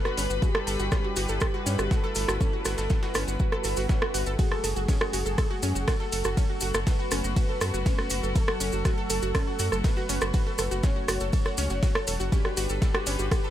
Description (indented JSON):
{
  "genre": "melodic techno",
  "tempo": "121 BPM",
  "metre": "4/4",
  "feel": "straight",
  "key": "F# minor",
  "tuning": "A4 = 444 Hz",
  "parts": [
    { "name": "wide unison lead", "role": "melody", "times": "0.0-13.5 s", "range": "G4 to C#5", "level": "-34 LUFS", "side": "equal", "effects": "lush chorus, sidechain pumping, ping-pong delay" },
    { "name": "dark studio string section", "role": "sustained chords", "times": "0.0-13.5 s", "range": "F#3 to B4", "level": "-36 LUFS", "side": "left 1 dB", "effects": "sidechain pumping" },
    { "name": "wide unison pluck", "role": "arpeggios", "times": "0.1-13.5 s", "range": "C#4 to A4", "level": "-34 LUFS", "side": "right 1 dB", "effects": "sidechain pumping, tape echo" },
    { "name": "dusty soul sampler-style drum kit", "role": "drums", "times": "0.1-13.4 s", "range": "hi-hat, ride cymbal, snare drum", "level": "-44 LUFS", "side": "right 2 dB", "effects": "none" },
    { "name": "punchy analog drum machine", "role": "drums", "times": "0.1-13.4 s", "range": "hi-hat, ride cymbal, rim click", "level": "-31 LUFS", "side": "right 2 dB", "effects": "overdrive, sidechain pumping on hats, sidechain pumping on cymbals" },
    { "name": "round analog bass", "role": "bass", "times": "0.2-13.3 s", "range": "E1 to G2", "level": "-30 LUFS", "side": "equal", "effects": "sidechain pumping" },
    { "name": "maracas", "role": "percussion", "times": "0.2-13.4 s", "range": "none", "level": "-36 LUFS", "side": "left 2 dB", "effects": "none" },
    { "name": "electronic kick drum", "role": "drums", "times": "0.4-13.4 s", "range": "none", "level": "-26 LUFS", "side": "equal", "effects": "none" },
    { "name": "swell", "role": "sound effects", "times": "3.6-4.4 s", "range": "none", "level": "-38 LUFS", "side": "equal", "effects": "none" }
  ],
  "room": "digital ambience",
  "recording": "none",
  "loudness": "-24 LUFS",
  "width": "side -12 dB against mid",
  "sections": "0.0-13.5 A section",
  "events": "swell 3.6-4.4",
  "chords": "0.0 G; 4.4 F#madd9; 12.3 G"
}